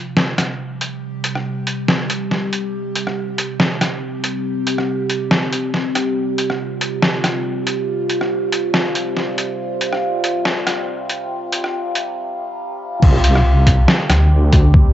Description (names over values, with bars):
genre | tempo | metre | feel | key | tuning
deep dubstep | 140 BPM | 4/4 | swing 54% on 16ths, half-time | unclear | A4 = 440 Hz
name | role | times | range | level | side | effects
overtone-sweeping drone | sustained chords | 0.0-14.9 s | C3 to G4 | -21 LUFS | right 1 dB | chorus, built-in reverb, cassette tape
trip hop sampler-style drum kit | drums | 0.2-14.6 s | crash cymbal, hi-hat, rim click, snare drum | -19 LUFS | equal | overdrive
deep soft wobble bass | bass | 13.0-14.9 s | C2 to D2 | -12 LUFS | equal | chorus
electronic kick drum | drums | 13.0-14.8 s | none | -12 LUFS | equal | overdrive
room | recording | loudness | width
moderate spring reverb, RT60 1.7 s, digital ambience | home recording on cassette, high-pass filter, nothing above 7.8 kHz | -16 LUFS | side -11 dB against mid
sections
0.0-13.0 A section; 13.0-14.9 B section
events
build-up 0.0-13.0; drop 13.0-14.9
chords
0.0 C5